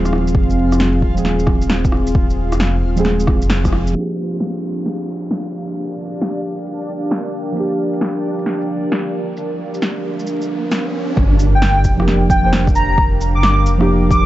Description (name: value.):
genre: future garage.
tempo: 133 BPM.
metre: 4/4.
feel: swing 66% on 16ths.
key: G phrygian.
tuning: A4 = 440 Hz.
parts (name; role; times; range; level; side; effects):
muted felt-like synth keys; accompaniment; 0.0-14.3 s; F3 to C5; -22 LUFS; right 1 dB; chorus, sidechain pumping, tape echo.
deep dark ambient pad; sustained chords; 0.0-14.3 s; C4 to F5; -23 LUFS; equal; chorus, built-in reverb, vintage 12-bit sampler grit, sidechain pumping.
warm sub bass; bass; 0.0-3.9, 11.2-14.3 s; Eb1 to G1; -17 LUFS; equal; sidechain pumping.
backwards swelling texture; texture; 0.0-11.2 s; D4 to F5; -31 LUFS; equal; built-in reverb.
electronic rim click, shaker, snare drum and cabasa; drums; 0.1-14.2 s; none; -22 LUFS; equal; overdrive.
electronic kick drum; drums; 0.3-3.7, 11.2-14.2 s; none; -17 LUFS; equal; overdrive.
downlifter, riser and impact; sound effects; 4.1-13.0 s; none; -30 LUFS; equal; none.
airy dreamy lead; melody; 11.5-14.3 s; G5 to D6; -18 LUFS; equal; chorus, cassette tape, analog delay.
room: light reverb.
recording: vinyl crackle, low-pass filter, nothing above 7.7 kHz.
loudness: -15 LUFS.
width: side -15 dB against mid.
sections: 0.0-4.0 A section; 4.0-11.2 B section; 11.2-14.3 C section.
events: band accent 3.5; filter sweep 4.0-11.2; riser 8.9-11.2; impact 11.2-13.0.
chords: 0.0 Fm; 4.0 Gm7.